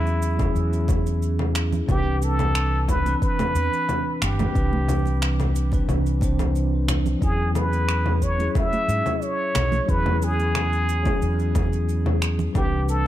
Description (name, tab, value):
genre	sunset chillout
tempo	90 BPM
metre	4/4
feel	straight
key	unclear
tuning	A4 = 441 Hz
part	trumpet with plunger mute	melody	0.0-13.1 s	E4 to E5	-27 LUFS	equal	tape echo
part	bell-like tine electric piano	accompaniment	0.0-13.1 s	E3 to C5	-28 LUFS	equal	auto-pan, ping-pong delay
part	mellow fretless electric bass	bass	0.0-13.1 s	G1 to G#2	-23 LUFS	equal	none
part	electronic shaker, congas and finger snaps	drums	0.1-13.0 s	none	-28 LUFS	left 1 dB	overdrive
part	electronic kick drum	drums	0.4-12.7 s	none	-24 LUFS	equal	overdrive
part	congas	percussion	0.4-12.5 s	none	-32 LUFS	right 3 dB	none
room	light reverb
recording	dark, warm production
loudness	-20 LUFS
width	side -13 dB against mid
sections	0.0-13.1 A section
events	none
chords	0.0 E69; 1.9 Cmaj9; 7.2 E69; 12.6 Cmaj9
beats	0.55 1.22 | 1.89 2.55 3.22 3.89 | 4.55 5.22 5.89 6.55 | 7.22 7.89 8.55 9.22 | 9.89 10.55 11.22 11.89 | 12.55